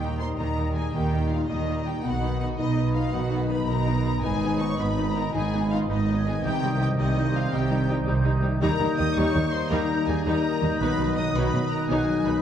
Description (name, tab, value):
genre	cinematic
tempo	110 BPM (dotted quarters)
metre	12/8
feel	straight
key	unclear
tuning	A4 = 440 Hz
part	rich studio violin section	melody	0.0-12.4 s	Eb5 to Eb6	-34 LUFS	left 4 dB	none
part	hollow flute section	second line	0.0-12.4 s	Bb5 to Ab6	-37 LUFS	equal	none
part	warm clarinet	second line	0.0-12.4 s	D#4 to Eb4	-34 LUFS	left 4 dB	none
part	warm symphonic violin section	second line	0.0-12.4 s	Eb4 to Eb5	-36 LUFS	left 4 dB	none
part	rich symphonic viola section	accompaniment	0.0-12.3 s	F#3 to Eb4	-34 LUFS	right 1 dB	none
part	mellow French horn section	sustained chords	0.0-12.4 s	F#3 to Eb4	-32 LUFS	left 4 dB	none
part	mellow trombone section	sustained chords	0.0-12.4 s	Bb2 to G3	-33 LUFS	right 3 dB	none
part	concert harp	arpeggios	0.0-12.4 s	Ab2 to Eb6	-34 LUFS	left 7 dB	none
part	clear trumpet section	stabs	0.0-12.4 s	Eb5	-36 LUFS	right 2 dB	none
part	clear symphonic double bass section	bass	0.0-12.3 s	Ab1 to Eb2	-28 LUFS	right 2 dB	none
part	rich symphonic cello section	bass	0.0-12.3 s	Ab2 to Eb3	-29 LUFS	right 2 dB	none
room	wet recital hall reverb, RT60 1.5 s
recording	dark, warm production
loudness	-22 LUFS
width	side -9 dB against mid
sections	0.0-12.4 A section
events	none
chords	0.0 Eb; 2.0 B; 4.2 Abm; 6.4 Cm; 8.6 Eb; 10.8 B